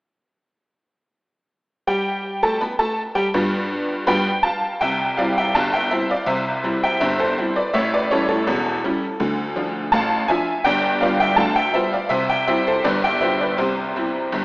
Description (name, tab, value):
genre	ragtime piano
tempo	82 BPM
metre	2/4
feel	straight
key	C major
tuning	A4 = 440 Hz
part	tack piano	solo	1.9-14.4 s	E1 to B5	-18 LUFS	equal	diffuse ambient delay
room	wet plate reverb, RT60 2.8 s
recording	dreamy mix soaked in reverb, AM radio sound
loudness	-18 LUFS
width	side -25 dB against mid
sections	1.9-4.8 A section; 4.8-14.4 B section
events	none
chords	1.9 Gadd9; 3.3 G7; 4.8 C; 7.7 A7; 9.2 Dm; 10.6 G7; 12.1 C; 12.8 G7; 13.6 C